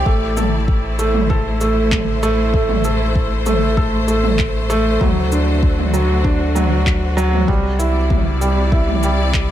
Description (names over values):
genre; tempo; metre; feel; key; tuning
piano and strings electronica; 97 BPM; 4/4; straight; A dorian; A4 = 441 Hz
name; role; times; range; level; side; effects
bright studio string section; sustained chords; 0.0-9.5 s; A2 to D5; -24 LUFS; left 2 dB; sidechain pumping
felt-muted upright piano; riff; 0.0-9.5 s; F#3 to A4; -19 LUFS; right 2 dB; ping-pong delay
warm sub bass; bass; 0.0-9.5 s; A1 to D2; -19 LUFS; equal; sidechain pumping
electronic kick drum; drums; 0.1-9.5 s; none; -18 LUFS; equal; none
organic electronic drum kit; drums; 0.4-9.5 s; handclaps, shaker, toms; -24 LUFS; equal; none
room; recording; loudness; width
digital ambience; none; -14 LUFS; side -11 dB against mid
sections
0.0-9.5 A section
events
none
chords
0.1 Am; 5.0 D7; 7.5 Cadd9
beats
| 0.06 0.68 1.30 1.92 | 2.53 3.15 3.77 4.39 | 5.01 5.63 6.25 6.86 | 7.48 8.10 8.72 9.34